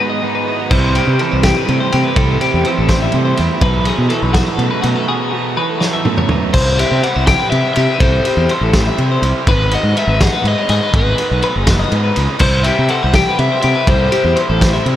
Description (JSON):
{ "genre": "math rock and midwest emo", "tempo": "82 BPM (dotted quarters)", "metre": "6/8", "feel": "straight", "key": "unclear", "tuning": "A4 = 440 Hz", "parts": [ { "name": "twelve-string electric guitar", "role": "accompaniment", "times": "0.0-6.5 s", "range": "F#2 to F#4", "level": "-21 LUFS", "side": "right 9 dB", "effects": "none" }, { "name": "twelve-string electric guitar", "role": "arpeggios", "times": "0.0-15.0 s", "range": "F#4 to E5", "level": "-19 LUFS", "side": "left 4 dB", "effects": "tremolo, diffuse ambient delay" }, { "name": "overdriven electric guitar", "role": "riff", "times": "0.0-15.0 s", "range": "G#2 to E4", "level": "-23 LUFS", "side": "right 2 dB", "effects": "none" }, { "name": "fuzz fingered electric bass", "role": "bass", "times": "0.7-15.0 s", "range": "F#1 to C3", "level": "-16 LUFS", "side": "equal", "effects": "overdrive" }, { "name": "loose indie drum kit", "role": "drums", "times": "0.7-15.0 s", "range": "crash cymbal, kick drum, ride cymbal, snare drum, toms", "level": "-18 LUFS", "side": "equal", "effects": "none" }, { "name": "overdriven semi-hollow guitar", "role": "melody", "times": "6.5-14.4 s", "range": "B4 to G5", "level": "-18 LUFS", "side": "left 2 dB", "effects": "diffuse ambient delay" } ], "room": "moderate huge ambient reverb, RT60 4.0 s", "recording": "dreamy mix soaked in reverb", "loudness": "-12 LUFS", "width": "side -12 dB against mid", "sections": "0.0-6.5 A section; 6.5-15.0 B section", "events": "drum fill 5.8-6.5", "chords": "0.0 G#m7; 0.7 C6; 3.6 B7sus4; 6.5 C6; 9.5 G#m7; 12.4 C6" }